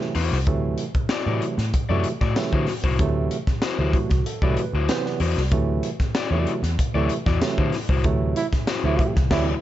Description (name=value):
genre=funk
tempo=95 BPM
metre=4/4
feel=straight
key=unclear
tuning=A4 = 440 Hz
part: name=barky tine electric piano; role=stabs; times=0.0-9.5 s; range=C3 to D5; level=-27 LUFS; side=right 4 dB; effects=overdrive
part: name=crisp fusion drum kit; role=drums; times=0.0-9.5 s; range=crash cymbal, hi-hat, kick drum, snare drum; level=-24 LUFS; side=equal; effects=none
part: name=crunchy overdriven guitar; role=accompaniment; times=0.1-9.5 s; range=E4 to D5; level=-29 LUFS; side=left 7 dB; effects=none
part: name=vintage muted picked electric bass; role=bass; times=0.2-9.5 s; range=C2 to D3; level=-24 LUFS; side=equal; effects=none
part: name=tambourine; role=percussion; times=1.1-8.8 s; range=none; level=-42 LUFS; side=left 2 dB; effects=none
part: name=breathy trombone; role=second line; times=8.4-9.5 s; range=E4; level=-27 LUFS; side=right 5 dB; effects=none
room=light reverb, small room ambience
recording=dark, warm production, nothing above 7.8 kHz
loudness=-20 LUFS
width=side -13 dB against mid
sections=0.0-9.6 A section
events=tine electric piano fill 3.6-5.5; band accent 8.0-9.6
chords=0.0 D9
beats=| 0.47 1.10 1.73 2.36 | 3.00 3.63 4.26 4.89 | 5.52 6.15 6.78 7.42 | 8.05 8.68 9.31